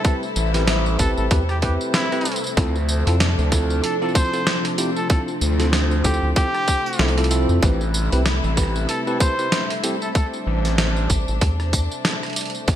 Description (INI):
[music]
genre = glitch hop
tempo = 95 BPM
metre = 4/4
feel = swing 58% on 16ths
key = A minor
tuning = A4 = 438 Hz
[part]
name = warm trumpet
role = melody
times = 0.0-10.3 s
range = E4 to C5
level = -27 LUFS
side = equal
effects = vintage 12-bit sampler grit, ping-pong delay
[part]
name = dark studio string section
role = sustained chords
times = 0.0-12.8 s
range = C3 to E4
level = -29 LUFS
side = left 1 dB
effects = sidechain pumping
[part]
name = bell-like tine electric piano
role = stabs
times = 0.0-9.9 s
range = C4 to B4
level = -27 LUFS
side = equal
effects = sidechain pumping, ping-pong delay
[part]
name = boom bap sampler-style drum kit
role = drums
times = 0.0-12.8 s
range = hi-hat, rim click, snare drum, tambourine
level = -24 LUFS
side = right 1 dB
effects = gated reverb
[part]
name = electronic kick drum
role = drums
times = 0.0-12.8 s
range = none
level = -19 LUFS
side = equal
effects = overdrive
[part]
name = granular cloud pad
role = texture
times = 0.0-12.7 s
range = D4 to E5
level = -30 LUFS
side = equal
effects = built-in reverb, sidechain pumping
[part]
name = gritty driven synth bass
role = bass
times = 0.4-12.8 s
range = A1 to D2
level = -21 LUFS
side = equal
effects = none
[part]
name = rubbery square bass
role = bass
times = 1.0-11.9 s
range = A1 to F2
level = -20 LUFS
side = equal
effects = tube saturation
[sound]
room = light reverb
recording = bright 1980s-style digital production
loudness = -18 LUFS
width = side -11 dB against mid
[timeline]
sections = 0.0-12.8 A section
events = none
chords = 0.0 Am7; 2.6 Dm7; 7.6 Am7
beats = | 0.05 0.68 1.31 1.94 | 2.57 3.20 3.84 4.47 | 5.10 5.73 6.36 6.99 | 7.62 8.26 8.89 9.52 | 10.15 10.78 11.41 12.05 | 12.68